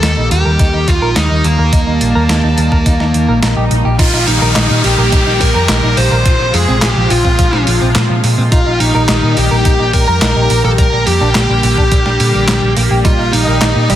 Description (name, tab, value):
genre	synthwave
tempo	106 BPM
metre	4/4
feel	straight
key	unclear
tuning	A4 = 440 Hz
part	dark smooth lead guitar	melody	0.0-14.0 s	Bb3 to C5	-16 LUFS	equal	overdrive, tape echo
part	warm analog pad	sustained chords	0.0-14.0 s	C3 to A5	-19 LUFS	left 1 dB	chorus, sidechain pumping
part	clean electric guitar	riff	0.0-13.8 s	F3 to Bb4	-23 LUFS	right 2 dB	lush chorus, digital delay
part	hollow-body short-scale picked electric bass	bass	0.0-14.0 s	Bb1 to Bb2	-14 LUFS	equal	sidechain pumping
part	clean 12-bit digital drum machine	drums	0.0-14.0 s	crash cymbal, handclaps, hi-hat, snare drum	-19 LUFS	right 1 dB	studio ambience
part	electronic kick drum	drums	0.6-13.2 s	none	-12 LUFS	equal	studio ambience
part	swell and downlifter	sound effects	3.2-8.5 s	none	-20 LUFS	equal	none
part	string machine, violins	second line	4.0-14.0 s	Eb5 to C6	-21 LUFS	equal	ensemble chorus, digital delay
part	analog pluck	arpeggios	13.0-14.0 s	G3 to Eb4	-22 LUFS	right 4 dB	chorus
room	light reverb, digital ambience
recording	dense, heavily limited modern master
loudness	-9 LUFS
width	side -12 dB against mid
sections	0.0-4.0 A section; 4.0-14.0 B section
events	swell 3.2-4.0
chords	0.0 Eb; 4.0 Eb/Bb; 6.3 Fm/Bb; 8.5 Eb/Bb; 10.8 Gm/Bb; 13.0 Eb/Bb